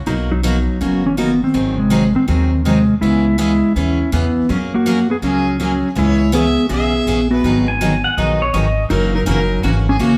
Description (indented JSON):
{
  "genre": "country, western swing",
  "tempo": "163 BPM",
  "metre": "4/4",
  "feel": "swing 65% on 8ths",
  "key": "B major",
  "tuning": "A4 = 440 Hz",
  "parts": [
    { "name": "upright bass", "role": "bass", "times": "0.0-10.2 s", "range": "F#1 to F#2", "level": "-23 LUFS", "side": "equal", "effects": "none" },
    { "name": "clean lap steel guitar", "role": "melody", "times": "0.1-10.2 s", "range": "B#2 to G#4", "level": "-18 LUFS", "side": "equal", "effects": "none" },
    { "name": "picked steel-string acoustic guitar", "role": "accompaniment", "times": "0.1-10.1 s", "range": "B2 to G#4", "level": "-24 LUFS", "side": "equal", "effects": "none" },
    { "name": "clear fiddle", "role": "second line", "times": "5.2-10.2 s", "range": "F#4 to E5", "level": "-26 LUFS", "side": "equal", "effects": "none" },
    { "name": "pedal steel guitar", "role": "second line", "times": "7.7-8.8 s", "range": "C#5 to G#5", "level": "-22 LUFS", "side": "equal", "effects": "none" }
  ],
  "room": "moderate large studio reverb, RT60 1.1 s",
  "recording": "band playing live in one room",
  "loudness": "-16 LUFS",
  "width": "mono",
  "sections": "0.1-10.2 A section",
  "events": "none",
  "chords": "0.1 Bmaj7; 1.5 G#7; 3.0 C#m7; 4.5 F#add9; 6.0 C#m7; 7.4 G#m7; 8.9 F#7"
}